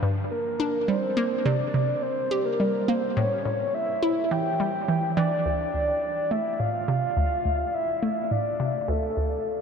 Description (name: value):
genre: ambient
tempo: 105 BPM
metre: 4/4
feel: straight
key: D minor from 5.5 s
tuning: A4 = 441 Hz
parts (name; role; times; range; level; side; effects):
- hollow square pluck; riff; 0.0-9.4 s; D2 to G4; -26 LUFS; right 1 dB; chorus, analog delay
- soft octave-layered synth lead; melody; 0.3-9.6 s; A4 to G5; -26 LUFS; equal; chorus, analog delay
room: wet huge ambient reverb, RT60 8.1 s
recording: dark, warm production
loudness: -23 LUFS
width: side -6 dB against mid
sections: 0.0-5.5 A section; 5.5-9.6 B section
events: filter sweep on synth arpeggio sound 5.5-9.6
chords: 0.0 Gm; 0.9 C5; 3.2 A7; 5.5 Dm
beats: 0.31 | 0.89 1.46 2.03 2.60 | 3.17 3.74 4.31 4.88 | 5.46 6.03 6.60 7.17 | 7.74 8.31 8.88 9.46